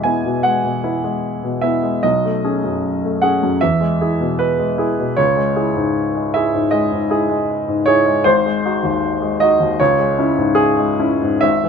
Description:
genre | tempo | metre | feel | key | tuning
classical, romantic character piece for solo piano | 77 BPM | 4/4 | rubato | unclear | A4 = 440 Hz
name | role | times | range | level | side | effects
clear grand piano | solo | 0.0-11.7 s | G#1 to G#5 | -15 LUFS | equal | none
room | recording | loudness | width
light reverb | close, detailed microphones | -15 LUFS | side -6 dB against mid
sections
0.0-11.7 A section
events
none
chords
0.0 E; 2.0 B13; 3.6 E; 5.2 C#m; 8.3 G#7; 9.8 C#m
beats
0.44 1.23 | 2.03 2.83 3.61 4.39 | 5.18 5.96 6.73 7.50 | 8.26 9.03 9.80 10.57 | 11.42

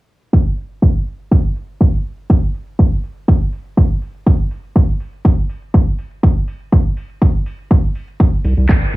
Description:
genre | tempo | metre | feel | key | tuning
progressive house | 122 BPM | 4/4 | straight | unclear | A4 = 440 Hz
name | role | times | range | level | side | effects
electronic kick drum | drums | 0.3-8.8 s | none | -12 LUFS | equal | none
house drum kit | drums | 0.3-9.0 s | handclaps, hi-hat | -26 LUFS | equal | overdrive, low-pass filter on hats, low-pass filter on snare, low-pass filter on room
round analog bass | bass | 8.4-9.0 s | C2 | -12 LUFS | equal | sidechain pumping
room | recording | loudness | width
little or no reverb | low-pass filter, small room ambience | -14 LUFS | side -19 dB against mid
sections
0.3-9.0 A section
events
filter sweep 0.3-9.0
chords
none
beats
| 0.33 0.82 1.31 1.81 | 2.30 2.79 3.28 3.77 | 4.26 4.76 5.25 5.74 | 6.23 6.72 7.22 7.71 | 8.20 8.69

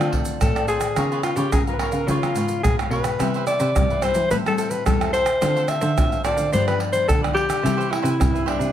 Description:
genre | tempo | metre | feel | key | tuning
samba and choro | 108 BPM | 4/4 | straight | C major | A4 = 441 Hz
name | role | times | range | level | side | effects
mellow alto saxophone | melody | 0.0-8.7 s | D4 to E5 | -23 LUFS | left 1 dB | none
cavaquinho | accompaniment | 0.0-8.7 s | D4 to G5 | -30 LUFS | right 4 dB | none
nylon-string guitar | accompaniment | 0.0-8.7 s | G2 to Bb4 | -29 LUFS | left 8 dB | none
warm cello | bass | 0.0-8.7 s | E2 to E3 | -26 LUFS | equal | none
egg shaker, pandeiro, tamborim and surdo | percussion | 0.0-8.7 s | none | -24 LUFS | right 1 dB | none
room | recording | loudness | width
moderate studio ambience, RT60 0.5 s | none | -18 LUFS | side -10 dB against mid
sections
0.0-8.7 A section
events
none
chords
0.0 Dm7; 1.0 Db6; 3.2 Cmaj7; 4.3 Am7; 5.4 Dm7; 6.5 G7; 7.6 Cmaj7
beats
0.41 | 0.97 1.53 2.08 2.64 | 3.20 3.75 4.31 4.87 | 5.42 5.98 6.54 7.09 | 7.65 8.21

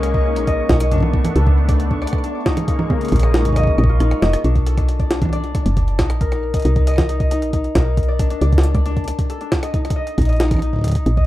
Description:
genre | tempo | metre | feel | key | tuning
IDM | 136 BPM | 4/4 | straight | unclear | A4 = 440 Hz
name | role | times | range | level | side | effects
warm analog pad | sustained chords | 0.0-4.4 s | Db3 to D4 | -26 LUFS | equal | chorus
Celtic harp | arpeggios | 0.0-11.3 s | D4 to Eb5 | -23 LUFS | left 3 dB | ping-pong delay
woody FM bass | bass | 0.0-11.3 s | F1 to C#2 | -17 LUFS | equal | none
jungle sampler-style drum kit | drums | 0.0-11.2 s | congas, hi-hat, rim click, shaker, snare drum | -24 LUFS | right 1 dB | tape echo
bubbling stepped-filter texture | texture | 0.0-4.5 s | C#6 | -36 LUFS | right 8 dB | chorus, built-in reverb
electronic kick drum | drums | 0.1-11.3 s | none | -20 LUFS | equal | none
room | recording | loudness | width
little or no reverb | rough home demo mix | -15 LUFS | side -15 dB against mid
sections
0.0-4.4 A section; 4.4-11.3 B section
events
drum fill 4.0-4.4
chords
0.0 Bbm9; 0.9 Bm9; 2.5 Bbm7; 4.4 Bm7; 6.0 Bbsus2; 8.0 Bm9; 9.5 Bbsus4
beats
0.03 0.47 | 0.92 1.36 1.80 2.24 | 2.68 3.12 3.56 4.00 | 4.44 4.89 5.33 5.77 | 6.21 6.65 7.09 7.53 | 7.97 8.41 8.86 9.30 | 9.74 10.18 10.62 11.06

